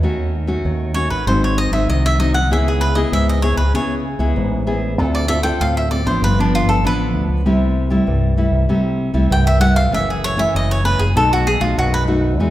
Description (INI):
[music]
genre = samba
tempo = 97 BPM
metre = 4/4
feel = straight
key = unclear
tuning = A4 = 438 Hz
[part]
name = nylon-string guitar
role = accompaniment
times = 0.0-12.5 s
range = F#2 to A4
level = -19 LUFS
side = left 1 dB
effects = none
[part]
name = fingered electric bass with an envelope filter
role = bass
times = 0.0-12.5 s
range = F#1 to C#3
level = -18 LUFS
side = equal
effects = none
[part]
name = cavaquinho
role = melody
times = 0.9-12.0 s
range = D4 to G5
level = -20 LUFS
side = right 1 dB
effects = none
[sound]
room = moderate recital hall reverb, RT60 1.7 s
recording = recorded in a church or concert hall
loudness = -14 LUFS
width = side -14 dB against mid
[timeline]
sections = 0.0-12.5 A section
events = cavaquinho solo 0.0-12.5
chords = 0.0 D#m7b5; 1.3 G#7; 2.5 C#m7; 5.0 Dm7; 6.2 G7; 7.5 C6; 9.9 F#m7; 11.2 B7